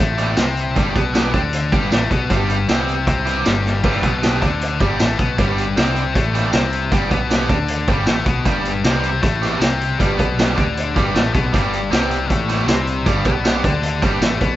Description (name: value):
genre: indie rock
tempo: 156 BPM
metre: 4/4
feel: straight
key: G major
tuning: A4 = 442 Hz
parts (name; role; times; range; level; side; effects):
- scooped high-gain guitar; riff; 0.0-14.6 s; G2 to D4; -20 LUFS; left 4 dB; distortion
- growling picked electric bass; bass; 0.0-14.6 s; G1 to D2; -24 LUFS; equal; overdrive
- crunchy overdriven guitar; riff; 0.2-14.3 s; G3 to G4; -25 LUFS; right 7 dB; ensemble chorus, analog delay
- raw garage drum kit; drums; 0.2-14.5 s; crash cymbal, hi-hat, kick drum, snare drum, tambourine; -19 LUFS; equal; none
- mellow tonewheel organ; sustained chords; 10.0-14.6 s; G4 to D6; -32 LUFS; right 1 dB; none
room: light reverb, small room reverb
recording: rough home demo mix, nothing above 7.7 kHz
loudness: -15 LUFS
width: side -14 dB against mid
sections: 0.0-3.8 A section; 3.8-14.6 A section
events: drum fill 3.7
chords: 0.0 G